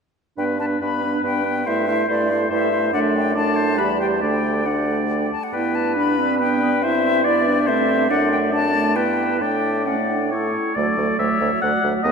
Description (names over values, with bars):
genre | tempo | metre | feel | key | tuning
quick classical-period movement for wind quintet | 140 BPM | 3/4 | rubato | G major, D major from 8.1 s | A4 = 440 Hz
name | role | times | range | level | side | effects
silver concert flute | melody | 0.4-12.1 s | A4 to B5 | -24 LUFS | left 4 dB | none
clear oboe | second line | 0.4-12.1 s | B4 to F#5 | -24 LUFS | left 2 dB | none
mellow clarinet | accompaniment | 0.4-12.1 s | A3 to G4 | -24 LUFS | right 3 dB | none
warm French horn | accompaniment | 0.4-12.1 s | F#3 to D4 | -26 LUFS | equal | none
clear bassoon | bass | 0.4-12.1 s | D2 to A2 | -26 LUFS | right 4 dB | none
room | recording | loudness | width
wet cathedral reverb, RT60 4.6 s | in a vast, echoing space | -18 LUFS | side -5 dB against mid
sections
0.4-10.8 A section; 10.8-12.1 B section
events
none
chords
0.4 G; 1.7 Am7/G; 2.9 D/F#; 3.8 Em; 4.2 D; 5.5 G; 6.8 Am7/G; 8.1 D/F#; 9.0 Em/G; 9.4 D/A; 10.3 A; 10.8 D